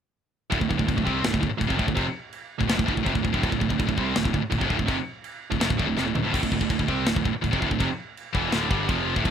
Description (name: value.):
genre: heavy metal.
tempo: 165 BPM.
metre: 4/4.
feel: straight.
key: D minor.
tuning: A4 = 441 Hz.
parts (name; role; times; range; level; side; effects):
scooped high-gain guitar; riff; 0.5-9.3 s; D2 to C4; -28 LUFS; left 11 dB; distortion.
tight distorted guitar; riff; 0.5-9.3 s; D2 to C4; -27 LUFS; right 11 dB; distortion.
fuzz picked electric bass; bass; 0.5-9.3 s; D1 to C2; -31 LUFS; left 1 dB; overdrive.
tight metal drum kit; drums; 0.5-9.3 s; china cymbal, crash cymbal, kick drum, snare drum, toms; -27 LUFS; left 1 dB; none.
room: small room ambience.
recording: rough home demo mix.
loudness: -22 LUFS.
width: side -8 dB against mid.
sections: 0.5-9.3 A section.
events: drum fill 6.0-6.3.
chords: 0.5 Dm.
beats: | 0.51 0.87 1.24 1.60 | 1.97 2.33 2.69 3.06 | 3.42 3.79 4.15 4.51 | 4.88 5.24 5.60 5.97 | 6.33 6.69 7.06 7.42 | 7.78 8.15 8.51 8.87 | 9.23.